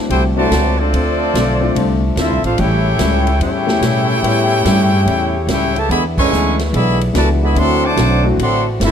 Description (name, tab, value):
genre	jazz, big band swing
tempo	144 BPM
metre	4/4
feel	swing 66% on 8ths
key	A major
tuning	A4 = 440 Hz
part	warm grand piano	accompaniment	0.0-8.4 s	G#3 to E5	-21 LUFS	left 5 dB	none
part	mellow trombone section	sustained chords	0.0-8.9 s	C#3 to F#4	-27 LUFS	left 1 dB	none
part	clear trumpet section	melody	0.1-8.9 s	C4 to D6	-19 LUFS	left 2 dB	none
part	warm trombone section	second line	0.1-8.9 s	C3 to G4	-20 LUFS	right 3 dB	none
part	hollow-body jazz guitar	accompaniment	0.1-8.9 s	A2 to G#4	-24 LUFS	left 6 dB	none
part	upright bass	bass	0.1-8.9 s	G1 to B2	-17 LUFS	right 1 dB	none
part	swinging big-band drum kit	drums	0.1-8.9 s	crash cymbal, hi-hat, kick drum, ride cymbal, snare drum	-24 LUFS	equal	none
room	light reverb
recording	dark, warm production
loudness	-12 LUFS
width	side -8 dB against mid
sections	0.0-8.9 A section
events	band accent 6.1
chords	0.0 D7; 0.9 Dm7; 2.6 A7; 5.9 E7; 7.6 D7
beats	0.10 0.51 | 0.93 1.34 1.75 2.17 | 2.58 3.00 3.41 3.83 | 4.24 4.66 5.07 5.49 | 5.91 6.32 6.74 7.15 | 7.57 7.98 8.40 8.81